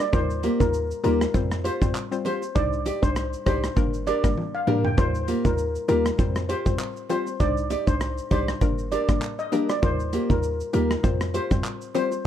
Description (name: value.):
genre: dancehall.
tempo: 99 BPM.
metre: 4/4.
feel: swing 56% on 16ths.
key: unclear.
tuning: A4 = 442 Hz.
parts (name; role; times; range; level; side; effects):
steel pan; melody; 0.0-12.1 s; Bb4 to G5; -29 LUFS; right 1 dB; ping-pong delay.
modern studio drum kit; drums; 0.0-12.2 s; handclaps, hi-hat, kick drum, rim click, shaker, toms; -26 LUFS; right 1 dB; none.
bongos; percussion; 0.0-12.2 s; none; -38 LUFS; right 8 dB; none.
hollow square pluck; accompaniment; 0.1-12.3 s; G3 to C5; -29 LUFS; left 8 dB; chorus, sidechain pumping.
short 808-style bass; bass; 0.1-11.6 s; G1 to F2; -27 LUFS; right 1 dB; none.
nylon-string guitar; arpeggios; 0.4-12.2 s; Bb3 to D5; -28 LUFS; right 1 dB; none.
room: studio reverb.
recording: none.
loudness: -22 LUFS.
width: side -10 dB against mid.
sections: 0.0-12.3 A section.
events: drum fill 4.4-5.0.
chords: 0.1 Ebadd9; 1.3 Fsus2; 2.6 Cmadd9; 3.8 Gm; 5.0 Ebadd9; 6.2 Fsus2; 7.4 Cmadd9; 8.6 Gm; 9.8 Ebadd9; 11.0 Fsus2.